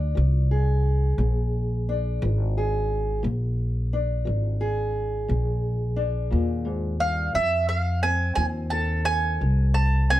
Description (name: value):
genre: acoustic country blues, solo or duo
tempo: 58 BPM (dotted quarters)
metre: 12/8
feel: straight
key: Bb mixolydian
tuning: A4 = 444 Hz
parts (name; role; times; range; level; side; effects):
- fingerpicked steel-string acoustic guitar; accompaniment; 0.0-10.2 s; F2 to A4; -30 LUFS; left 1 dB; none
- upright bass; bass; 0.0-10.2 s; Ab1 to F2; -23 LUFS; equal; none
- mandolin; melody; 7.0-10.2 s; E5 to A5; -24 LUFS; right 2 dB; plate reverb
room: light reverb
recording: dark, warm production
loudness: -22 LUFS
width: side -14 dB against mid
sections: 0.0-10.2 A section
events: none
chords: 0.0 Bb7; 7.3 F7